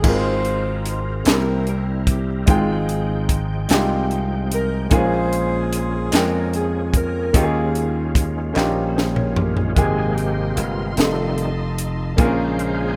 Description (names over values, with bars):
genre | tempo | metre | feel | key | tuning
slow gospel | 49 BPM (dotted quarters) | 6/8 | straight | Ab major | A4 = 440 Hz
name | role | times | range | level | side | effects
mellow saxophone section | melody | 0.0-8.5 s | C4 to C5 | -28 LUFS | equal | none
clear grand piano | accompaniment | 0.0-13.0 s | Ab2 to G5 | -26 LUFS | equal | none
overdriven tonewheel organ | sustained chords | 0.0-13.0 s | C3 to G5 | -32 LUFS | equal | slow rotary speaker, chorus vibrato
slap bass | bass | 0.0-13.0 s | F1 to F2 | -25 LUFS | equal | none
crisp fusion drum kit | drums | 0.0-12.8 s | crash cymbal, hi-hat, kick drum, snare drum, toms | -22 LUFS | equal | none
group handclap | percussion | 1.3-8.9 s | none | -32 LUFS | equal | none
mellow electric guitar | second line | 8.5-10.0 s | F4 to Eb5 | -35 LUFS | equal | none
warm studio string section | sustained chords | 9.8-13.0 s | Eb5 to C6 | -38 LUFS | equal | none
room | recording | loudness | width
small room reverb | rough home demo mix | -20 LUFS | mono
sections
0.0-9.8 A section; 9.8-13.0 B section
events
drum fill 8.6-9.8; tonewheel organ solo 9.8-13.0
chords
0.0 Ab69; 1.3 C7; 2.5 Fm9/Ab; 4.9 Bbm7; 7.3 Eb9sus4; 9.8 Abmaj7; 11.0 F7; 12.2 Bbm7